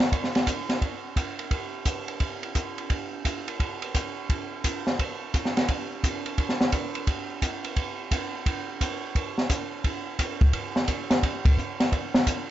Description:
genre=jazz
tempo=173 BPM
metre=4/4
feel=swing 65% on 8ths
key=none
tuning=none
part: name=open jazz drum kit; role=drums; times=0.0-12.4 s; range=hi-hat, kick drum, ride cymbal, snare drum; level=-25 LUFS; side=equal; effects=none
room=light reverb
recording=dark, warm production, nothing above 7.7 kHz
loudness=-25 LUFS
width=side -13 dB against mid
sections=0.0-2.9 A section; 2.9-12.5 B section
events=none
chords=none

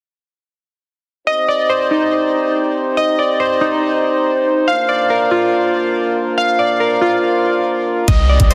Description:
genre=hip hop, drill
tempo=141 BPM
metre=4/4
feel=half-time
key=C minor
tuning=A4 = 439 Hz
part: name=mellow French horn section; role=sustained chords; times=1.3-8.5 s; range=Eb3 to C5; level=-23 LUFS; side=equal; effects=none
part: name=soft electric-piano-like synth keys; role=arpeggios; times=1.3-8.5 s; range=Eb4 to F5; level=-17 LUFS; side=equal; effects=chorus, delay
part: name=hard-hitting 808-style bass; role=bass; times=8.1-8.5 s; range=C2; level=-15 LUFS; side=equal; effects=none
part: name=drill drum kit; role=drums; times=8.1-8.5 s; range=hi-hat, kick drum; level=-16 LUFS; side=equal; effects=overdrive
part: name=downlifter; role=sound effects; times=8.1-8.5 s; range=none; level=-29 LUFS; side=equal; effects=none
room=light reverb, digital ambience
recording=dense, heavily limited modern master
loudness=-16 LUFS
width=mono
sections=1.3-8.1 A section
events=none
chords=1.3 Cmadd9; 4.7 Bb

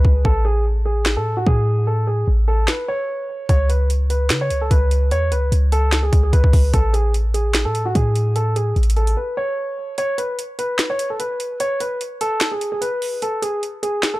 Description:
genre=hip hop, trap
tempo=148 BPM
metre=4/4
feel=half-time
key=unclear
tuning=A4 = 438 Hz
part: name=dark concert grand piano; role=melody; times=0.0-14.2 s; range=F#4 to C#5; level=-22 LUFS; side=equal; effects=low-pass filter, analog delay
part: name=clean 808-style bass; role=bass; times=0.0-9.2 s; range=A1 to C#3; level=-17 LUFS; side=equal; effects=none
part: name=trap drum kit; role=drums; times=0.0-14.1 s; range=finger snaps, hi-hat, kick drum, snare drum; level=-20 LUFS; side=equal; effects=none
room=little or no reverb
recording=dry, gritty hardware recording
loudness=-17 LUFS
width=side -19 dB against mid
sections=0.0-14.2 A section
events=break 0.0-3.5, 9.2-10.0, 10.0-14.2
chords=0.2 N.C.; 3.5 C#7(no3); 6.7 N.C.

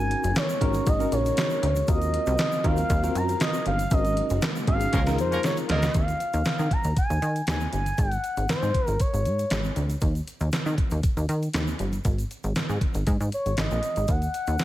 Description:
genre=early-eighties boogie funk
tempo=118 BPM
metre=4/4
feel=straight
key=Eb dorian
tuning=A4 = 439 Hz
part: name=expressive synth lead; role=melody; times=0.0-9.8, 13.3-14.6 s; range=C5 to Bb5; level=-28 LUFS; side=equal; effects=chorus
part: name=tine electric piano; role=accompaniment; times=0.0-5.7 s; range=C4 to Bb4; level=-31 LUFS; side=left 1 dB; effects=overdrive, medium stereo tremolo
part: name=soft string machine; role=sustained chords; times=0.1-5.9 s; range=Db3 to F5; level=-36 LUFS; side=equal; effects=ensemble chorus
part: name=plucky analog bass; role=bass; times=0.0-14.6 s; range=Gb1 to Eb3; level=-26 LUFS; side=equal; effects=none
part: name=detuned 8-bit digital drum machine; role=drums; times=0.1-14.6 s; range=handclaps, hi-hat, kick drum, snare drum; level=-26 LUFS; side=equal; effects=gated reverb
part: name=egg shaker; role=percussion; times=0.2-14.6 s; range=none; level=-46 LUFS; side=right 5 dB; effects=none
part: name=clear horn section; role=second line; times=4.9-6.0 s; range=F3 to Bb4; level=-33 LUFS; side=right 1 dB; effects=none
room=little or no reverb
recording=none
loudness=-22 LUFS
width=side -14 dB against mid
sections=0.0-5.9 A section; 5.9-14.6 B section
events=band accent 3.9-5.9; drum fill 4.9-5.9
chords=0.0 Ab9sus4; 1.9 Ebm69; 3.9 Ab9sus4; 4.9 Db6; 5.9 Ebsus2; 8.0 Ab7sus4; 10.0 Eb; 12.1 Ab5; 14.1 Ebm

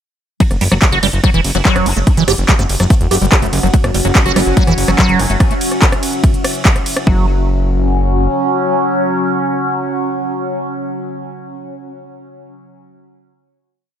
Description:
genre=psychedelic trance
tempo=144 BPM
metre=4/4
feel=straight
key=unclear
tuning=A4 = 439 Hz
part: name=liquid acid bass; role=riff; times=0.4-7.3 s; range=E3 to G4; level=-17 LUFS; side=moving between left 2 dB and right 4 dB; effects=phaser, auto-pan, sidechain pumping, tape echo
part: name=electronic kick drum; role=drums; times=0.4-7.2 s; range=none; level=-13 LUFS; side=equal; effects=overdrive
part: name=techno drum kit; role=drums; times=0.4-7.0 s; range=handclaps, hi-hat, ride cymbal, rim click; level=-18 LUFS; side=equal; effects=overdrive
part: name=deep dark ambient pad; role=texture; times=2.4-11.1 s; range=C#4 to F#5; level=-22 LUFS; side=equal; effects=chorus, built-in reverb, sidechain pumping
part: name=fat analog bass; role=bass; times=0.5-8.3 s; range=E1 to F#1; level=-16 LUFS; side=equal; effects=none
part: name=overtone-sweeping drone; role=sustained chords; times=4.1-11.0 s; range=F#3 to C#4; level=-19 LUFS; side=equal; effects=chorus, built-in reverb, phaser, sidechain pumping
room=light reverb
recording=none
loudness=-11 LUFS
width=side -9 dB against mid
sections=0.4-7.1 drop; 7.1-10.4 final chord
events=drop 0.4-7.1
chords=0.4 F#5

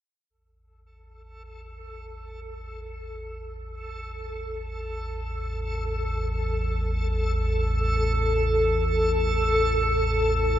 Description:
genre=dark ambient drone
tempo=free time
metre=none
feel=none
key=unclear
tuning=A4 = 440 Hz
part: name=deep rumbling drone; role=drone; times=1.4-10.6 s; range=A1 to E2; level=-28 LUFS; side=equal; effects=built-in reverb, phaser, wide subtle chorus
part: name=backwards swelling texture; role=texture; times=1.4-10.6 s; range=A4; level=-27 LUFS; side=equal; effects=built-in reverb
room=wet cathedral reverb, RT60 7.0 s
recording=none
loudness=-23 LUFS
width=side -11 dB against mid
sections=0.3-10.6 A section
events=fade-in on synth drone 0.3-10.6; fade-in on synth texture 0.3-10.6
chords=0.3 A5

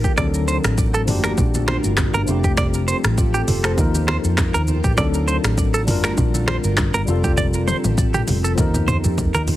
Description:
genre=afrobeats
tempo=100 BPM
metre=4/4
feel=swing 55% on 16ths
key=G minor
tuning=A4 = 440 Hz
part: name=tine electric piano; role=accompaniment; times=0.0-9.6 s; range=F3 to C5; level=-25 LUFS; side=left 3 dB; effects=medium stereo tremolo
part: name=granular cloud pad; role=sustained chords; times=0.0-9.6 s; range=Eb3 to Bb4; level=-28 LUFS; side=right 1 dB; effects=built-in reverb
part: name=direct-recorded clean electric guitar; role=riff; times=0.0-9.4 s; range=G4 to D5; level=-25 LUFS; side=right 4 dB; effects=tremolo, digital delay
part: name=deep house drum kit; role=drums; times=0.0-9.6 s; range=finger snaps, handclaps, hi-hat, kick drum, rim click, shaker, toms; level=-21 LUFS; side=equal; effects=none
part: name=vintage muted fingered electric bass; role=bass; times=0.2-9.6 s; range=F1 to F2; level=-21 LUFS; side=equal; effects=none
part: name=congas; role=percussion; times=0.2-9.6 s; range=none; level=-29 LUFS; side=right 2 dB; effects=none
room=light reverb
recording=heavily compressed radio sound, multiband compression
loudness=-16 LUFS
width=side -14 dB against mid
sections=0.0-9.6 A section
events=drum fill 7.4-9.6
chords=0.2 D7; 1.1 Gm7; 2.3 Fadd9; 3.8 Ebsus2; 5.0 D7; 5.9 Gm7; 7.1 Fadd9; 8.6 Ebsus2

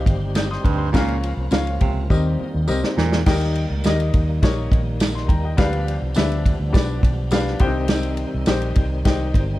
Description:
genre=uptempo 1960s-style soul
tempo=104 BPM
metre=4/4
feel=straight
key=unclear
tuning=A4 = 441 Hz
part: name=clear upright piano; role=accompaniment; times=0.0-9.4 s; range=C3 to G6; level=-26 LUFS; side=left 3 dB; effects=none
part: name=tonewheel organ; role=sustained chords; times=0.0-9.6 s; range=Eb3 to G4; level=-31 LUFS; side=equal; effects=slow rotary speaker, overdrive, chorus vibrato
part: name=vintage muted fingered electric bass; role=bass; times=0.0-9.6 s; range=G1 to Fb2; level=-23 LUFS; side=equal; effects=none
part: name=congas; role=percussion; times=0.0-9.5 s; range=none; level=-35 LUFS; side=right 2 dB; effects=none
part: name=natural country drum kit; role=drums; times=0.1-9.5 s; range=crash cymbal, kick drum, ride cymbal, snare drum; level=-19 LUFS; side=equal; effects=none
part: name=tambourine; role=percussion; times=0.4-9.2 s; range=none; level=-38 LUFS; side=right 3 dB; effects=none
part: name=warm baritone saxophone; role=riff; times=0.6-3.2 s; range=G2 to C3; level=-28 LUFS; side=right 5 dB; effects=none
room=little or no reverb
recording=dark, warm production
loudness=-18 LUFS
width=side -16 dB against mid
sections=0.0-3.3 A section; 3.3-9.6 A section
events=drum fill 2.1-3.3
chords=0.0 Cm; 0.9 Bbm; 2.1 Eb6; 3.3 Eb; 5.6 G7; 7.6 Cm

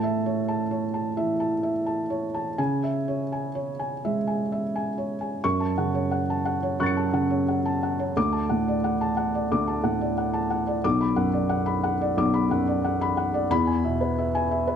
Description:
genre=neoclassical minimalist piano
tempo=89 BPM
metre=4/4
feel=rubato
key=F# minor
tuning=A4 = 441 Hz
part: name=felt-muted upright piano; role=solo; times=0.0-14.8 s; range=B1 to C#7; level=-23 LUFS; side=equal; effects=none
room=moderate recital hall reverb, RT60 1.3 s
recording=none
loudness=-23 LUFS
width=side -8 dB against mid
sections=0.0-5.4 A section; 5.4-14.8 B section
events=none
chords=0.0 A; 2.6 C#m; 5.4 F#m; 8.2 D; 10.8 Bm; 13.5 E

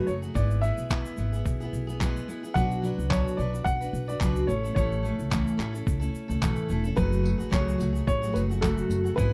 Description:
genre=acoustic pop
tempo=109 BPM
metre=4/4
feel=swing 55% on 16ths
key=unclear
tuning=A4 = 440 Hz
part: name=warm upright piano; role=melody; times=0.0-9.3 s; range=A4 to F#5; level=-35 LUFS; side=equal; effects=none
part: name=picked steel-string acoustic guitar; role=accompaniment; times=0.0-9.3 s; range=F#2 to B4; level=-32 LUFS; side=equal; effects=none
part: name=upright bass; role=bass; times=0.0-9.3 s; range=E1 to C#2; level=-31 LUFS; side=equal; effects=none
part: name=tube shaker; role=percussion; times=0.1-9.3 s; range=none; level=-53 LUFS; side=equal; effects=none
part: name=trip hop sampler-style drum kit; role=drums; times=0.4-9.3 s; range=handclaps, kick drum, tambourine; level=-31 LUFS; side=equal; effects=none
part: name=ethereal airy pad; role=sustained chords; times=8.0-9.3 s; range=F#3 to B4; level=-44 LUFS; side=equal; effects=none
room=little or no reverb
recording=dark, warm production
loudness=-27 LUFS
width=mono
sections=0.0-7.0 A section; 7.0-9.3 B section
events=none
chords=0.3 E/G#; 2.6 Bm; 4.5 A; 7.0 F#madd9

